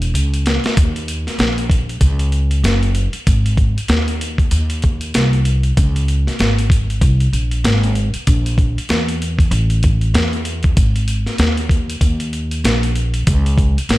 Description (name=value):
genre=hip hop, jazz-hop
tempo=96 BPM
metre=4/4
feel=swing 60% on 16ths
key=Eb minor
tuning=A4 = 440 Hz
part: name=upright bass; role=bass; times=0.0-14.0 s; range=Fb1 to Fb2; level=-17 LUFS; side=equal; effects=none
part: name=boom bap sampler-style drum kit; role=drums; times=0.0-14.0 s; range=hi-hat, kick drum, snare drum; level=-17 LUFS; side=equal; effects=none
room=little or no reverb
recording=none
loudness=-14 LUFS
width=side -18 dB against mid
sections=0.8-14.0 A section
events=drum fill 0.1-0.8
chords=none